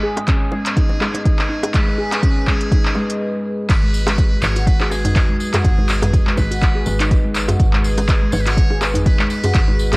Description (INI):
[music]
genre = afro house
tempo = 123 BPM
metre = 4/4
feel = swing 56% on 16ths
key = G# minor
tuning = A4 = 438 Hz
[part]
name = trumpet with metal mute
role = melody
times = 0.0-10.0 s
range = G#4 to C#5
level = -28 LUFS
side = right 1 dB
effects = low-pass filter, cassette tape, analog delay
[part]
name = dark analog pad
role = sustained chords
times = 0.0-10.0 s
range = G#3 to B4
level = -28 LUFS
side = left 1 dB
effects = chorus, sidechain pumping
[part]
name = handpan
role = arpeggios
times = 0.0-10.0 s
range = G#3 to G#4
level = -24 LUFS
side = equal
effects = sidechain pumping, low-pass filter
[part]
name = woody FM bass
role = bass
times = 0.0-10.0 s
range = G#1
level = -21 LUFS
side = equal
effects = tube saturation, sidechain pumping, high-pass filter
[part]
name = deep house drum kit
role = drums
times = 0.2-10.0 s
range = crash cymbal, handclaps, hi-hat, toms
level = -22 LUFS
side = equal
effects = high-pass filter on snare, high-pass filter on hats, high-pass filter on toms, high-pass filter on cymbals, high-pass filter on room
[part]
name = bongos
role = percussion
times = 0.2-10.0 s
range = none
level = -25 LUFS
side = right 1 dB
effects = none
[part]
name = electronic kick drum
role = drums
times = 0.3-9.7 s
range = none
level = -16 LUFS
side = equal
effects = none
[part]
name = tambourine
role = percussion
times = 3.7-10.0 s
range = none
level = -34 LUFS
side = left 2 dB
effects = none
[sound]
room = light reverb, small room ambience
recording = home recording on cassette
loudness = -14 LUFS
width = side -26 dB against mid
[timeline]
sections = 0.0-3.7 A section; 3.7-10.0 B section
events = build-up 0.0-3.7; filter sweep on analog synth pad 0.0-3.7; break 3.2-3.7; drop 3.7-10.0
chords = 0.0 G#m; 3.7 G#m7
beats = 0.28 0.77 1.25 | 1.74 2.23 2.72 3.21 | 3.69 4.18 4.67 5.16 | 5.64 6.13 6.62 7.11 | 7.60 8.08 8.57 9.06 | 9.55